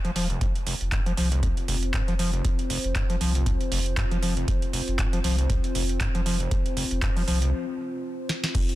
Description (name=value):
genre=acid house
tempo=118 BPM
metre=4/4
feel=swing 56% on 16ths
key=unclear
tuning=A4 = 441 Hz
part: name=overdriven acid bass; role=riff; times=0.0-8.6 s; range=F1 to F3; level=-31 LUFS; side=left 1 dB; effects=distortion, lush chorus, sidechain pumping, analog delay
part: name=warm sub bass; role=bass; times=0.0-8.7 s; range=Eb1 to C2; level=-27 LUFS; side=equal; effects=sidechain pumping
part: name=booming analog drum machine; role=drums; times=0.0-8.8 s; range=crash cymbal, handclaps, hi-hat, shaker, snare drum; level=-31 LUFS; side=right 2 dB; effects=none
part: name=dark analog pad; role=sustained chords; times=0.9-8.8 s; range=C4 to C5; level=-33 LUFS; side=left 1 dB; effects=chorus, phaser, sidechain pumping
part: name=electronic kick drum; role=drums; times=0.4-8.7 s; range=none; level=-27 LUFS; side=equal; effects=none
room=digital ambience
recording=dense, heavily limited modern master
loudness=-23 LUFS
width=side -16 dB against mid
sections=0.0-8.5 A section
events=break 7.5-8.5; drum fill 8.3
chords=0.0 F5